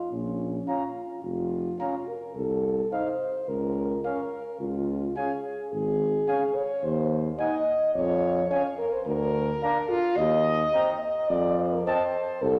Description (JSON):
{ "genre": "classical, brass quintet", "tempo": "107 BPM", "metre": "4/4", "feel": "straight", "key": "Bb minor, Bb major from 9.1 s", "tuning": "A4 = 441 Hz", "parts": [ { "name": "mellow flugelhorn", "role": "second line", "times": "0.0-12.0 s", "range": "F4 to Gb5", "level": "-37 LUFS", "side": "equal", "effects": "none" }, { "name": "dark French horn", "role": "accompaniment", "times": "0.1-12.6 s", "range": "Db4 to Eb5", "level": "-30 LUFS", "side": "equal", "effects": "none" }, { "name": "warm bass trombone", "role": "bass", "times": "0.1-12.6 s", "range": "F1 to F2", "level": "-32 LUFS", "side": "equal", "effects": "none" }, { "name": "mellow trumpet", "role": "melody", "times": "0.7-12.0 s", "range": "F5 to Bb5", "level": "-38 LUFS", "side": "equal", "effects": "none" }, { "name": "clear trombone", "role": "accompaniment", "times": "0.7-12.0 s", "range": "C4 to Eb4", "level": "-38 LUFS", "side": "equal", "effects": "none" } ], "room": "wet scoring stage reverb, RT60 1.8 s", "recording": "none", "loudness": "-27 LUFS", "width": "mono", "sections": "0.1-12.6 A section", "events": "none", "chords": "0.1 Bbm; 2.4 F7/C; 3.5 Bbm/Db; 4.6 Db; 6.8 N.C.; 7.9 Db/F; 9.1 Bb/D; 10.2 Cm/Eb; 11.3 F", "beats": "| 0.11 0.67 1.24 1.80 | 2.36 2.92 3.48 4.04 | 4.60 5.16 5.72 6.28 | 6.84 7.39 7.95 8.51 | 9.06 9.62 10.18 10.74 | 11.30 11.86 12.43" }